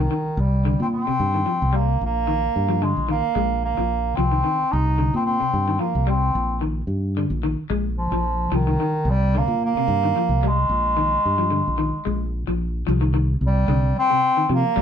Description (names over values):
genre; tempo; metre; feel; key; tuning
afrobeat; 110 BPM; 4/4; swing 54% on 16ths; C minor; A4 = 438 Hz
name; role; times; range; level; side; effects
clear bass clarinet; melody; 0.0-14.8 s; Eb3 to Eb4; -22 LUFS; right 1 dB; none
electric guitar at the edge of break-up; arpeggios; 0.0-14.8 s; C3 to Ab3; -26 LUFS; left 4 dB; none
fingered electric bass; bass; 0.0-14.8 s; Bb1 to C3; -22 LUFS; equal; none
room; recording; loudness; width
moderate studio reverb, RT60 0.6 s; band playing live in one room; -19 LUFS; side -8 dB against mid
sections
0.0-12.9 A section; 12.9-14.8 B section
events
none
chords
0.0 Cm; 2.0 Bbsus4; 4.2 Cm; 6.3 Bbsus4; 8.5 Cm7; 10.7 Bb7sus4; 12.9 Cm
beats
0.38 0.92 1.47 | 2.01 2.55 3.09 3.63 | 4.18 4.72 5.26 5.80 | 6.35 6.89 7.43 7.98 | 8.52 9.07 9.61 10.15 | 10.70 11.24 11.79 12.33 | 12.87 13.41 13.96 14.50